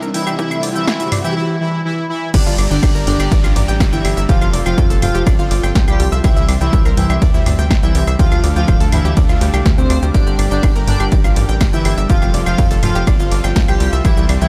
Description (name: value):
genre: melodic techno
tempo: 123 BPM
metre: 4/4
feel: straight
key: G dorian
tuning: A4 = 439 Hz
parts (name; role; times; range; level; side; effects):
- lush unison pad; sustained chords; 0.0-14.5 s; C3 to D6; -33 LUFS; equal; none
- analog pluck; arpeggios; 0.0-14.5 s; E4 to G5; -28 LUFS; equal; chorus, cassette tape, sidechain pumping, tape echo
- brassy analog pad; stabs; 0.0-14.5 s; C3 to G4; -28 LUFS; equal; chorus, sidechain pumping, tape echo
- house drum kit; drums; 0.0-14.5 s; claves, crash cymbal, hi-hat, ride cymbal, shaker, snare drum, toms; -26 LUFS; equal; studio reverb
- riser and downlifter; sound effects; 0.0-6.2 s; none; -32 LUFS; equal; none
- analog synth brass; melody; 0.1-14.5 s; C3 to G4; -24 LUFS; equal; chorus, sidechain pumping, analog delay
- airy dreamy lead; second line; 0.1-14.5 s; C5 to G5; -30 LUFS; equal; chorus, sidechain pumping, tape echo
- electronic kick drum; drums; 0.4-14.1 s; none; -17 LUFS; equal; high-pass filter on kick, studio reverb
- tight sequencer bass; bass; 2.3-14.5 s; D1 to F2; -20 LUFS; equal; sidechain pumping
- swarming drone; drone; 9.3-14.5 s; none; barely audible; none; none
room: digital ambience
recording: dry, gritty hardware recording, transformer saturation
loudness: -15 LUFS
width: mono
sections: 0.0-2.3 A section; 2.3-14.5 B section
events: build-up 0.0-2.3; filter sweep on analog synth pad 0.0-2.3; drop 2.3-14.5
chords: 0.4 D5; 2.3 Gm; 4.3 F; 6.2 C; 8.2 Dm; 10.1 Gm; 12.1 F